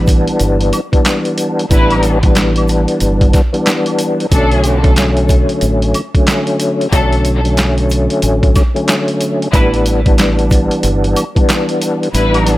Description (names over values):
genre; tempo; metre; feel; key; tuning
hip hop, boom-bap hip-hop; 92 BPM; 4/4; swing 62% on 16ths; unclear; A4 = 440 Hz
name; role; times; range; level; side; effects
tonewheel organ; accompaniment; 0.0-12.6 s; D3 to D4; -14 LUFS; left 1 dB; overdrive, chorus vibrato, slow rotary speaker, cassette tape, high-pass filter, low-pass filter
deep dub fingered electric bass; bass; 0.0-12.6 s; G1 to B1; -15 LUFS; equal; none
boom bap sampler-style drum kit; drums; 0.1-12.6 s; handclaps, hi-hat, kick drum, snare drum; -14 LUFS; equal; none
egg shaker and woodblock; percussion; 0.1-12.6 s; none; -27 LUFS; right 2 dB; none
warm studio string section; stabs; 1.7-12.6 s; F#3 to B4; -19 LUFS; left 1 dB; high-pass filter, low-pass filter, digital delay
room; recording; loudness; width
digital ambience; none; -10 LUFS; side -16 dB against mid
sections
0.0-12.6 A section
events
kick muted 12.1-12.6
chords
0.0 A9sus4; 4.3 Bm7; 9.5 A9sus4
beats
0.40 1.06 | 1.71 2.36 3.01 3.67 | 4.32 4.97 5.62 6.27 | 6.93 7.58 8.23 8.88 | 9.54 10.19 10.84 11.49 | 12.14